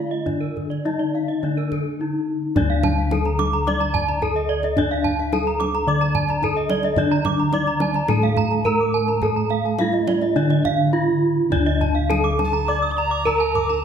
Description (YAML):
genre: Balinese gamelan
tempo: 106 BPM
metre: 4/4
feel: straight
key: D pelog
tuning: A4 = 439 Hz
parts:
  - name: gamelan-type bronze metallophone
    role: melody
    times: 0.0-13.8 s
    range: D4 to D5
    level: -23 LUFS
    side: right 1 dB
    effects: none
  - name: gamelan-type bronze metallophone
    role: accompaniment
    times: 0.0-2.6, 7.0-11.5 s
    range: D3 to A3-30c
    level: -27 LUFS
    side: right 3 dB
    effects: none
  - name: gamelan-type bronze metallophone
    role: arpeggios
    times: 0.0-13.7 s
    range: A4-30c to D6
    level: -27 LUFS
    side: left 5 dB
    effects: none
  - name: gamelan-type bossed gongs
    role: bass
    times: 0.0-13.8 s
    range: D2 to A4-30c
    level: -24 LUFS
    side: left 2 dB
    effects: none
  - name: gamelan-type bronze metallophone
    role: arpeggios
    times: 0.1-13.8 s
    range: Bb4-20c to Eb6+20c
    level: -26 LUFS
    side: right 6 dB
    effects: none
  - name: kendang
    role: percussion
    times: 0.3-13.8 s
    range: none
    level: -28 LUFS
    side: right 2 dB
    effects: none
  - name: bright soprano recorder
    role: second line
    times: 12.4-13.8 s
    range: A5-31c to D6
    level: -31 LUFS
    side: right 5 dB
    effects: none
room: wet recital hall reverb, RT60 1.5 s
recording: none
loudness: -18 LUFS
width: side -8 dB against mid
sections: 0.0-2.6 A section; 2.6-11.5 B section; 11.5-13.8 C section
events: break 1.7-2.6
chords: none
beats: | 0.26 0.85 1.43 2.00 | 2.56 3.11 3.66 4.22 | 4.77 5.32 5.88 6.43 | 6.98 7.54 8.09 8.65 | 9.22 9.79 10.36 10.94 | 11.52 12.10 12.68 13.27